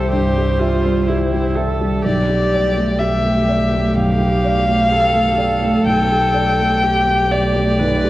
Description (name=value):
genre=neoclassical piano and strings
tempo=62 BPM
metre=4/4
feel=rubato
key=unclear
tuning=A4 = 440 Hz
part: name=dark violin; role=melody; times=0.0-8.1 s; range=C5 to G5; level=-18 LUFS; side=left 2 dB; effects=none
part: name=felt-muted upright piano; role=accompaniment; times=0.0-8.1 s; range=B1 to E5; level=-21 LUFS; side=right 1 dB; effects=none
part: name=warm viola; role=accompaniment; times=0.0-8.1 s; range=E4 to B4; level=-24 LUFS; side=right 2 dB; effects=none
part: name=deep dark ambient pad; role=sustained chords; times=0.0-8.1 s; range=G3 to G5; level=-24 LUFS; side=right 2 dB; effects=chorus, built-in reverb
part: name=rich double bass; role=bass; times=0.0-8.1 s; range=B1 to C2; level=-20 LUFS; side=equal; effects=none
room=moderate recital hall reverb, RT60 1.4 s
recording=worn, warbling old tape, cassette tape, warbly pitch drift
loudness=-14 LUFS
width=side -15 dB against mid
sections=0.0-8.1 A section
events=none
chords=0.0 C; 2.0 Gadd9/B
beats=0.11 1.07 | 2.03 3.00 3.96 4.91 | 5.87 6.83 7.79